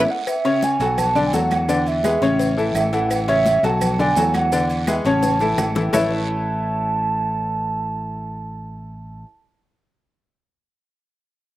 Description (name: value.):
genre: latin, salsa.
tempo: 170 BPM.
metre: 4/4.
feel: straight.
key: A major.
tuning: A4 = 439 Hz.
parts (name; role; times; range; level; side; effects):
hollow clarinet-like synth lead; melody; 0.0-9.2 s; E5 to A5; -22 LUFS; right 3 dB; chorus.
bright concert grand piano; accompaniment; 0.0-9.2 s; C#3 to E5; -22 LUFS; left 3 dB; slapback echo.
fingered electric bass; bass; 0.0-9.2 s; A1 to E2; -25 LUFS; equal; none.
agogo bells and timbales; percussion; 0.3-6.0 s; none; -30 LUFS; right 4 dB; slapback echo.
claves; percussion; 0.3-6.0 s; none; -34 LUFS; right 4 dB; none.
congas; percussion; 0.3-6.0 s; none; -30 LUFS; left 2 dB; none.
cowbell and bongos; percussion; 0.3-6.0 s; none; -30 LUFS; left 5 dB; slapback echo.
guiro; percussion; 0.3-6.0 s; none; -40 LUFS; right 6 dB; slapback echo.
maracas; percussion; 0.3-6.0 s; none; -37 LUFS; right 4 dB; none.
room: little or no reverb.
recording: recorded outdoors, with no room sound.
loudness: -17 LUFS.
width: side -15 dB against mid.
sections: 0.3-5.9 A section; 5.9-8.8 B section.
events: drum fill 0.0, 5.2-5.9; band accent 0.0.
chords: 0.3 Aadd9; 1.0 Bm7; 1.7 E7; 2.4 Aadd9; 3.8 Bm7; 4.5 E7; 5.2 A; 5.9 Aadd9.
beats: | 0.27 0.62 0.98 1.33 | 1.69 2.04 2.40 2.75 | 3.10 3.46 3.81 4.17 | 4.52 4.87 5.23 5.58 | 5.93 6.29 6.64 6.99 | 7.35 7.70 8.05 8.41.